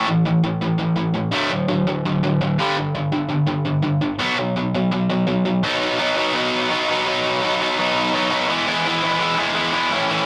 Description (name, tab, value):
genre	punk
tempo	168 BPM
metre	4/4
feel	straight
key	unclear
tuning	A4 = 441 Hz
part	distorted electric guitar	solo	0.0-10.3 s	G2 to E4	-20 LUFS	equal	overdrive
room	light reverb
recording	rough rehearsal-room recording, tube saturation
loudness	-20 LUFS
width	mono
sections	0.0-5.6 A section; 5.6-8.5 B section; 8.5-10.3 C section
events	none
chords	0.0 A5; 1.3 D; 2.6 G5; 4.2 B5; 5.6 B; 8.5 E